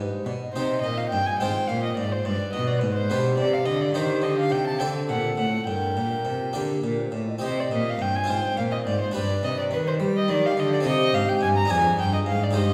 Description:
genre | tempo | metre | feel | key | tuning
classical, baroque-style sonata movement with continuo | 70 BPM (dotted quarters) | 6/8 | straight | G minor from 3.9 s, C minor from 7.4 s | A4 = 440 Hz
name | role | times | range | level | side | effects
mellow baroque flute | melody | 0.0-12.7 s | G4 to Eb5 | -32 LUFS | equal | none
harpsichord | accompaniment | 0.0-12.7 s | F2 to Eb5 | -33 LUFS | equal | none
rich cello | bass | 0.0-12.7 s | F2 to G3 | -29 LUFS | equal | none
rich violin | second line | 0.5-12.7 s | B4 to Bb5 | -28 LUFS | equal | none
room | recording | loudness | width
wet recital hall reverb, RT60 1.8 s | heard from further back in the room | -24 LUFS | mono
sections
0.0-7.4 A section; 7.4-12.7 A section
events
none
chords
0.0 G; 0.6 Cm; 1.4 Fm/Ab; 2.3 G; 3.9 Cm; 4.8 D5; 5.7 Gm; 7.4 Cm; 8.3 Fm/Ab; 9.1 G; 10.9 Cm; 11.7 Ddim/F

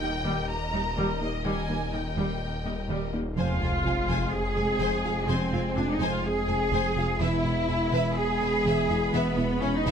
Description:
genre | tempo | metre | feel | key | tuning
cinematic, hybrid orchestral and electronic film score | 125 BPM | 4/4 | straight | unclear | A4 = 441 Hz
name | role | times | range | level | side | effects
clear symphonic violin section | melody | 0.0-9.9 s | Eb5 to B5 | -37 LUFS | left 1 dB | none
rich symphonic violin section | second line | 0.0-9.9 s | Bb4 to Ab5 | -35 LUFS | left 3 dB | none
rich symphonic viola section | accompaniment | 0.0-9.9 s | G3 to Ab4 | -32 LUFS | right 1 dB | none
thumb-piano-like synth pluck | arpeggios | 0.0-9.9 s | Eb3 to F4 | -35 LUFS | right 1 dB | chorus
clear symphonic cello section | bass | 0.0-9.9 s | Eb2 to Ab4 | -30 LUFS | right 1 dB | none
detuned saw bass | bass | 0.0-9.9 s | Eb1 to F1 | -34 LUFS | equal | none
mellow French horn section | sustained chords | 3.4-9.9 s | G#3 to C4 | -33 LUFS | left 3 dB | none
dark studio double bass section | bass | 3.4-9.9 s | E1 to F1 | -31 LUFS | right 2 dB | none
sub drop | sound effects | 3.4-5.3 s | none | -34 LUFS | equal | none
room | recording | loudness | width
moderate recital hall reverb, RT60 1.6 s | close, detailed microphones | -24 LUFS | side -7 dB against mid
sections
0.0-3.4 A section; 3.4-9.9 A section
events
impact 3.4-5.3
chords
0.0 Eb; 3.4 Fm; 7.2 E

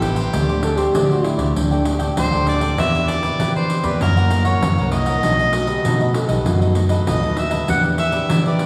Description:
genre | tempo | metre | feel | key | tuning
samba and choro | 98 BPM | 4/4 | straight | E minor | A4 = 439 Hz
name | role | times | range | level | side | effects
mellow harmonica | melody | 0.0-8.7 s | G4 to F#5 | -24 LUFS | equal | none
cavaquinho | accompaniment | 0.0-8.7 s | D4 to G5 | -28 LUFS | equal | none
nylon-string guitar | accompaniment | 0.0-8.7 s | F#2 to G4 | -28 LUFS | equal | none
vintage muted fingered electric bass | bass | 0.0-8.7 s | A1 to E3 | -22 LUFS | equal | none
pandeiro | percussion | 0.0-8.7 s | none | -26 LUFS | equal | none
warm trombone | second line | 0.6-6.9 s | D4 to A4 | -26 LUFS | equal | none
room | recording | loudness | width
wet scoring stage reverb, RT60 1.9 s | recorded in a church or concert hall, small room reverb | -18 LUFS | mono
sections
0.0-8.7 A section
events
none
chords
0.3 D7sus4; 1.6 Gsus2/D; 2.8 Em7; 4.0 F#7; 5.2 B7; 7.7 Em7

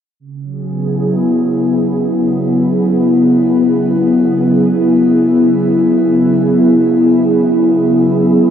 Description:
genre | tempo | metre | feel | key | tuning
ambient | free time | none | none | C# minor | A4 = 440 Hz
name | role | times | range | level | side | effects
airy breathy pad | sustained chords | 0.2-8.5 s | C#3 to G#4 | -10 LUFS | equal | chorus
room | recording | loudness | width
wet cathedral reverb, RT60 5.2 s | dark, warm production | -10 LUFS | side -9 dB against mid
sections
0.2-8.5 A section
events
filter sweep on analog synth pad 0.2-8.5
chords
0.2 C#m7

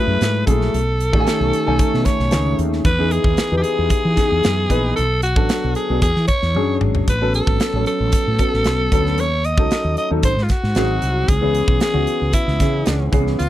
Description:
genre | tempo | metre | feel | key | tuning
polished 1980s jazz-funk pop | 114 BPM | 4/4 | straight | unclear | A4 = 442 Hz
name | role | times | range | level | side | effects
raspy alto saxophone | melody | 0.0-13.5 s | E4 to D#5 | -21 LUFS | equal | none
warm concert grand piano | accompaniment | 0.0-13.4 s | D#3 to G#5 | -22 LUFS | left 1 dB | wide subtle chorus
mellow fretless electric bass | bass | 0.1-13.5 s | G#1 to E3 | -20 LUFS | equal | none
modern studio drum kit | drums | 0.2-13.5 s | hi-hat, kick drum, snare drum, toms | -20 LUFS | equal | none
room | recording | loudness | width
little or no reverb | dry, close 1970s-style studio recording | -15 LUFS | side -13 dB against mid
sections
0.0-13.5 A section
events
drum fill 6.5-7.1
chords
0.0 F#m9; 0.7 B13; 2.8 Emaj7; 5.0 Bm7; 6.0 E13; 7.1 A69; 9.2 D#m7b5; 10.2 G#7; 11.3 C#m7

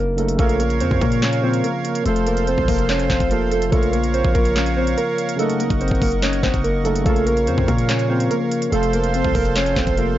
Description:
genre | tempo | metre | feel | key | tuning
hip hop, trap | 144 BPM | 4/4 | half-time | Bb harmonic minor | A4 = 441 Hz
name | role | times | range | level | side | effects
warbly lo-fi synth keys | melody | 0.0-10.2 s | A3 to Db5 | -21 LUFS | equal | chorus, low-pass filter
barky tine electric piano | accompaniment | 0.0-10.2 s | C3 to Bb4 | -24 LUFS | right 2 dB | low-pass filter
hard-hitting 808-style bass | bass | 0.0-10.2 s | F1 to Bb2 | -22 LUFS | equal | tube saturation
trap drum kit | drums | 0.2-10.1 s | handclaps, hi-hat, kick drum, snare drum | -23 LUFS | equal | overdrive
accordion | sustained chords | 0.4-10.2 s | A4 to Db6 | -26 LUFS | right 4 dB | light tremolo tuning
room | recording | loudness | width
little or no reverb | dry, gritty hardware recording, nothing above 7.6 kHz | -16 LUFS | side -13 dB against mid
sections
0.4-10.2 A section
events
none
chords
0.4 Bbm; 2.1 F; 3.7 Bbm; 5.4 Gb6; 7.1 Bbm; 8.7 F

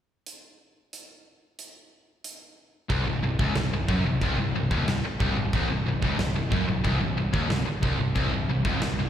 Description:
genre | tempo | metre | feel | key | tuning
heavy metal | 91 BPM | 4/4 | straight | C minor | A4 = 438 Hz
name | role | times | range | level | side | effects
big rock drum kit | drums | 0.3-9.0 s | crash cymbal, hi-hat, kick drum, snare drum | -30 LUFS | equal | none
scooped high-gain guitar | riff | 2.9-9.1 s | C2 to F#2 | -31 LUFS | right 8 dB | distortion, slapback echo
thick fuzz guitar | riff | 2.9-9.1 s | C2 to F#2 | -30 LUFS | equal | distortion
tight distorted guitar | riff | 2.9-9.1 s | C2 to F#2 | -30 LUFS | left 7 dB | distortion, slapback echo
fuzz picked electric bass | bass | 2.9-9.1 s | C1 to F#1 | -30 LUFS | equal | overdrive
room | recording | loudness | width
light reverb | live gig heard through the venue's PA, recital hall reverb | -23 LUFS | side -10 dB against mid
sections
0.3-2.9 A section; 2.9-9.1 B section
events
none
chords
0.3 N.C.; 2.9 Cm

